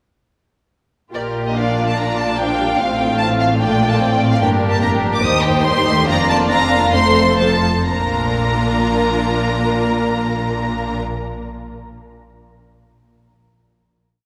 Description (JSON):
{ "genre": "quick classical-period movement for string orchestra", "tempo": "122-150 BPM", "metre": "4/4", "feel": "rubato", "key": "Bb major", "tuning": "A4 = 440 Hz", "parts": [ { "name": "warm symphonic violin section", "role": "melody", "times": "1.1-11.0 s", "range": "D5 to Eb6", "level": "-22 LUFS", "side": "equal", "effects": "none" }, { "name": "rich studio violin section", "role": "second line", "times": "1.1-11.0 s", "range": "D4 to F5", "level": "-23 LUFS", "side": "equal", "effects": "none" }, { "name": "warm symphonic viola section", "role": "accompaniment", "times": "1.1-11.0 s", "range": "F3 to F4", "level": "-23 LUFS", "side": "equal", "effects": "none" }, { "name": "rich studio double bass section", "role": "bass", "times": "1.1-11.0 s", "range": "F1 to Eb2", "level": "-26 LUFS", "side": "equal", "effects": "none" }, { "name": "rich symphonic cello section", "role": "bass", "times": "1.1-11.0 s", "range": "Eb2 to Bb2", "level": "-26 LUFS", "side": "equal", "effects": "none" } ], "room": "wet church reverb, RT60 3.3 s", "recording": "recorded in a church or concert hall", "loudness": "-17 LUFS", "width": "mono", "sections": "1.1-7.9 theme; 7.9-11.6 final chord", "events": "slowing down 3.6-7.9", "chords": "1.1 Bb; 2.8 F/A; 3.6 Bb; 4.4 Gm; 5.2 Cm/Eb; 6.1 Bb/F; 6.9 F; 7.9 Bb" }